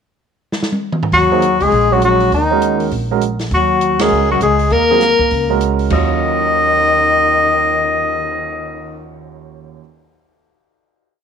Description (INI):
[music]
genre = modal jazz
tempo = 200 BPM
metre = 4/4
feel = swing 62% on 8ths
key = Eb minor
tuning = A4 = 440 Hz
[part]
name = open jazz drum kit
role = drums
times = 0.5-8.2 s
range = crash cymbal, cymbal swell, hi-hat, kick drum, ride cymbal, snare drum, toms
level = -24 LUFS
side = equal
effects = none
[part]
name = warm tenor saxophone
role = melody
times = 1.1-9.1 s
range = Eb4 to Eb5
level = -14 LUFS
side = left 1 dB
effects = none
[part]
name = bright trombone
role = second line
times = 1.1-9.1 s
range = Eb3 to Bb3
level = -20 LUFS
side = left 10 dB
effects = none
[part]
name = upright bass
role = bass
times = 1.1-9.8 s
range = Bb1 to Eb2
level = -21 LUFS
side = right 1 dB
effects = none
[part]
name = warm grand piano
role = accompaniment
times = 1.3-9.8 s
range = Eb2 to Db5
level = -20 LUFS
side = right 14 dB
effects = none
[sound]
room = moderate echo chamber reverb, RT60 1.3 s, small room ambience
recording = 1960s-style stereo with parts hard left and right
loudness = -12 LUFS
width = side -7 dB against mid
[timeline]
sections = 0.0-1.1 pickup bar; 1.1-5.9 A section; 5.9-8.3 final chord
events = drum fill 0.5-1.1; band accent 4.0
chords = 0.0 N.C.; 1.1 Ebm7; 3.5 Gbadd9; 5.9 Ebm9